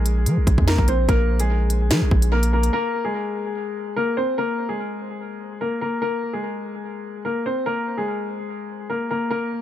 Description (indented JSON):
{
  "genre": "hip hop, drill",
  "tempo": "146 BPM",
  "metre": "4/4",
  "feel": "half-time",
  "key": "unclear",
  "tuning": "A4 = 440 Hz",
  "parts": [
    { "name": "clear upright piano", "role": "melody", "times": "0.0-9.6 s", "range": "Ab3 to C5", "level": "-24 LUFS", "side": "left 2 dB", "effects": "low-pass filter, tape echo" },
    { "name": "long sustained 808-style bass", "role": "bass", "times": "0.0-2.7 s", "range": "Bb1 to F3", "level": "-19 LUFS", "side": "equal", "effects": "none" },
    { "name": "drill drum kit", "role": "drums", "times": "0.1-2.7 s", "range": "hi-hat, kick drum, snare drum", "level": "-21 LUFS", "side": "equal", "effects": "tape echo" }
  ],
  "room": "digital ambience",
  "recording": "echo-heavy mix",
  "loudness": "-20 LUFS",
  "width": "side -11 dB against mid",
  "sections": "0.0-4.4 A section; 4.4-9.6 B section",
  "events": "break 2.7-4.4",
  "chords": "0.0 Bb5; 4.4 Absus2"
}